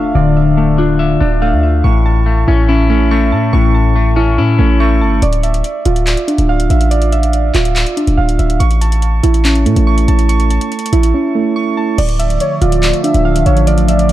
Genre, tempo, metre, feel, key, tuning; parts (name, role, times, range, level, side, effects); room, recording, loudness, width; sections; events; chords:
hip hop, trap; 142 BPM; 4/4; half-time; D harmonic minor; A4 = 445 Hz
semi-hollow electric guitar; accompaniment; 0.0-5.2 s; A2 to E5; -15 LUFS; left 5 dB
soft electric-piano-like synth keys; arpeggios; 0.0-14.1 s; A3 to C#6; -15 LUFS; right 3 dB; chorus, tape echo
hard-hitting 808-style bass; bass; 0.2-14.1 s; D1 to A2; -12 LUFS; equal
trap drum kit; drums; 5.2-14.1 s; crash cymbal, handclaps, hi-hat; -22 LUFS; left 1 dB
warbly tape-like pad; sustained chords; 12.2-14.1 s; D3 to A3; -17 LUFS; equal; chorus, built-in reverb
warm velvety synth lead; second line; 12.4-14.1 s; C#5 to E5; -18 LUFS; left 1 dB; chorus, tape echo
digital ambience; dark, warm production; -10 LUFS; side -14 dB against mid
0.0-12.0 A section; 12.0-14.1 B section
0.0 Dmadd9; 1.8 A; 5.2 Dmadd9; 8.6 A; 12.0 Dmadd9